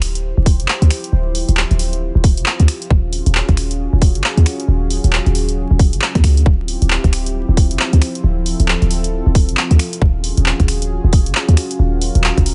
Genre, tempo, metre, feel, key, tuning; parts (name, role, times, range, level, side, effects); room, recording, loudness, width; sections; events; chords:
UK garage, two-step garage; 135 BPM; 4/4; swing 61% on 16ths; A4 = 440 Hz
warm analog pad; sustained chords; 0.0-12.5 s; C4 to C5; -28 LUFS; equal; chorus, sidechain pumping
short 808-style bass; bass; 0.0-12.5 s; D1 to Eb2; -17 LUFS; equal; tube saturation
punchy analog drum machine; drums; 0.0-12.5 s; finger snaps, handclaps, hi-hat; -22 LUFS; equal
deep dark ambient pad; texture; 0.8-12.5 s; F3 to Ab5; -33 LUFS; equal; chorus, built-in reverb, sidechain pumping
electronic kick drum; drums; 0.5-12.4 s; -15 LUFS; equal
digital ambience; vinyl crackle, nothing above 10.9 kHz; -15 LUFS; mono
0.0-12.5 A section
fade-in on ambient pad 0.0-12.5
0.0 Dm11; 2.9 Ebm11; 6.5 Dm11; 10.0 Ebm11